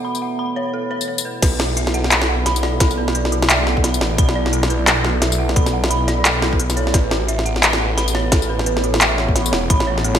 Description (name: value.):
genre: half-time drum and bass.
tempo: 174 BPM.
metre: 4/4.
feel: swing 59% on 16ths, half-time.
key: B minor.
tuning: A4 = 440 Hz.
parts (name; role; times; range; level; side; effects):
dark analog pad; sustained chords; 0.0-10.2 s; B3 to D5; -26 LUFS; right 2 dB; chorus, phaser, sidechain pumping.
dark detuned synth bell; arpeggios; 0.0-10.2 s; F#4 to B5; -24 LUFS; right 1 dB; chorus, phaser, vintage 12-bit sampler grit, ping-pong delay.
metallic inharmonic drone; texture; 0.0-1.4 s; B3; -31 LUFS; right 6 dB; chorus, built-in reverb.
organic electronic drum kit; drums; 0.1-10.2 s; crash cymbal, handclaps, hi-hat, snare drum, tambourine; -18 LUFS; equal; overdrive, gated reverb.
phased detuned saw bass; bass; 1.4-10.2 s; E1 to B1; -21 LUFS; equal; phaser.
electronic kick drum; drums; 1.4-9.8 s; none; -16 LUFS; equal; none.
room: moderate lush hall reverb, RT60 2.0 s, digital ambience.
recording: bright 1980s-style digital production.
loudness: -15 LUFS.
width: side -9 dB against mid.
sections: 0.0-1.4 A section; 1.4-10.2 B section.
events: drop 1.4-10.2.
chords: 0.0 A; 1.4 Bm; 6.9 A.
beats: | 0.05 0.39 0.74 1.08 | 1.43 1.77 2.12 2.46 | 2.81 3.15 3.49 3.84 | 4.18 4.53 4.87 5.22 | 5.56 5.91 6.25 6.60 | 6.94 7.29 7.63 7.98 | 8.32 8.67 9.01 9.36 | 9.70 10.05.